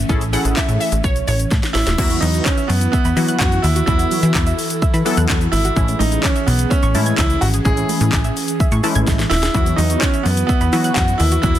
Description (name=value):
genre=dance-pop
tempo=127 BPM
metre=4/4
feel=straight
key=E major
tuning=A4 = 440 Hz
part: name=airy breathy pad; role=sustained chords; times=0.0-11.6 s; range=E3 to B4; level=-27 LUFS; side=right 1 dB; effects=chorus, sidechain pumping
part: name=plucky analog bass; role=bass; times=0.0-11.6 s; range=D#1 to E3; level=-18 LUFS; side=equal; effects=sidechain pumping
part: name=funky polysynth comp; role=accompaniment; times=0.1-11.6 s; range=E3 to A4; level=-24 LUFS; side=left 3 dB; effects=chorus, sidechain pumping
part: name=house drum kit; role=drums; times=0.1-11.6 s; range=crash cymbal, handclaps, hi-hat, kick drum, shaker, snare drum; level=-19 LUFS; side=equal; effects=overdrive
part: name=glassy wavetable pluck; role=melody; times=0.3-1.4 s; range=C#5 to F#5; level=-25 LUFS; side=right 1 dB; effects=chorus, sidechain pumping, ping-pong delay
part: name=bright grand piano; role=melody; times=1.7-11.6 s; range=B3 to G#4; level=-21 LUFS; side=right 2 dB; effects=none
part: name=soft round pluck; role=arpeggios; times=2.0-11.6 s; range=E3 to G#6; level=-28 LUFS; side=right 5 dB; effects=chorus, sidechain pumping, ping-pong delay
room=little or no reverb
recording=dense, heavily limited modern master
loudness=-14 LUFS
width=side -12 dB against mid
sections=0.0-2.0 A section; 2.0-11.6 B section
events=drum fill 1.5-2.0, 9.1-9.5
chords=0.0 Amaj7; 2.0 Esus2; 5.8 Amaj7; 9.5 Esus2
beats=| 0.10 0.57 1.04 1.51 | 1.99 2.46 2.93 3.40 | 3.88 4.35 4.82 5.29 | 5.76 6.24 6.71 7.18 | 7.65 8.13 8.60 9.07 | 9.54 10.02 10.49 10.96 | 11.43